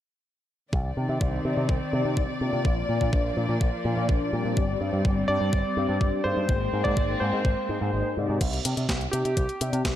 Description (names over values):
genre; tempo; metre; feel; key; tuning
italo disco; 125 BPM; 4/4; straight; C minor; A4 = 435 Hz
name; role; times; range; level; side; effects
dark studio string section; sustained chords; 0.7-8.4 s; Eb3 to D5; -30 LUFS; left 1 dB; none
picked electric bass with an envelope filter; bass; 0.7-9.9 s; G1 to C3; -28 LUFS; equal; low-pass filter
electronic kick drum; drums; 0.7-9.9 s; none; -25 LUFS; equal; overdrive, studio ambience
mellow synth brass; stabs; 1.0-10.0 s; Ab2 to D5; -31 LUFS; left 4 dB; chorus, cassette tape, tape echo
warm electric grand piano; melody; 5.3-10.0 s; G4 to D5; -29 LUFS; right 1 dB; tape echo
clean 12-bit digital drum machine; drums; 8.4-9.9 s; crash cymbal, hi-hat, snare drum; -30 LUFS; equal; overdrive, studio ambience
room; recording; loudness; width
light reverb, digital ambience; none; -23 LUFS; side -12 dB against mid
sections
0.7-8.4 A section; 8.4-10.0 B section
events
filter sweep on analog polysynth 0.7-8.4, 8.4-10.0; kick drops out 7.9-8.4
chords
0.7 Cmadd9; 2.7 Bb; 4.6 Gsus4; 6.5 Abadd9; 8.4 Cmadd9